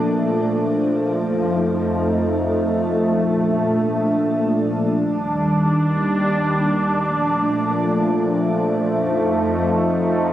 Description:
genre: hip hop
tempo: free time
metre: none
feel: none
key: Bb major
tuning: A4 = 440 Hz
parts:
  - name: sweeping resonant pad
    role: solo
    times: 0.0-10.3 s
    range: Eb2 to Eb4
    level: -17 LUFS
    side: equal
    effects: chorus
room: light reverb, digital ambience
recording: recorded on a phone in the room, club reverb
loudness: -17 LUFS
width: side -12 dB against mid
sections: 0.0-10.3 A section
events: none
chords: 0.0 Bbmaj7; 1.2 F7; 3.1 Bbmaj7; 5.1 Ebmaj7; 7.0 Bbmaj7; 8.9 F7

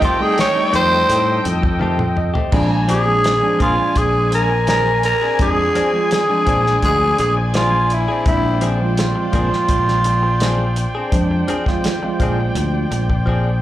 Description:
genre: straight-eighth soul blues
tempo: 84 BPM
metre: 4/4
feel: straight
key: Bb mixolydian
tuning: A4 = 439 Hz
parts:
  - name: growling tenor saxophone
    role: melody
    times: 0.0-11.1 s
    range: E4 to Db5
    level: -17 LUFS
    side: equal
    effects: slapback echo
  - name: tine electric piano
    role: accompaniment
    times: 0.0-13.1 s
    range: F3 to A5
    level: -23 LUFS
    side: right 3 dB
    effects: medium stereo tremolo, slapback echo
  - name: bright horn section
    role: sustained chords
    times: 0.0-13.6 s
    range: A4 to Ab5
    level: -24 LUFS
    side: left 1 dB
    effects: none
  - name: direct-recorded clean electric guitar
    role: stabs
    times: 0.0-13.5 s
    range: Eb3 to Ab4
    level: -26 LUFS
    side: left 4 dB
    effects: slapback echo
  - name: damped 70s drum kit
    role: drums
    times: 0.0-13.4 s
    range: crash cymbal, hi-hat, kick drum, snare drum, toms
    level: -20 LUFS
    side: equal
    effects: none
  - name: fingered electric bass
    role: bass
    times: 0.7-13.6 s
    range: Bb1 to Bb2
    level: -20 LUFS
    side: left 1 dB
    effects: none
room: moderate club reverb, RT60 0.5 s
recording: live gig heard through the venue's PA, club reverb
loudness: -14 LUFS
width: side -13 dB against mid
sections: 0.0-2.5 A section; 2.5-13.6 B section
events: tenor saxophone solo 0.0-2.5; tine electric piano fill 1.5-2.5; drum fill 1.8-2.5, 13.3-13.6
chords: 0.0 F9; 2.5 Bb9

